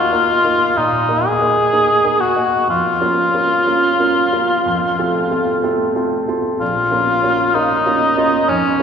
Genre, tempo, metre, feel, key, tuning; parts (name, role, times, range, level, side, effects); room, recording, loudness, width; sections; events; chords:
classical, romantic duo for cor anglais and grand piano; 62 BPM; 4/4; rubato; Bb minor; A4 = 440 Hz
mellow cor anglais; melody; 0.0-8.8 s; Db4 to Ab4; -14 LUFS; left 1 dB
clear grand piano; accompaniment; 0.0-8.8 s; Bb1 to F4; -19 LUFS; right 2 dB
wet concert hall reverb, RT60 1.8 s; recorded in a church or concert hall; -13 LUFS; side -7 dB against mid
0.0-8.8 A section
0.0 Eb5; 2.7 Bbm/F; 4.7 F; 6.6 Bbm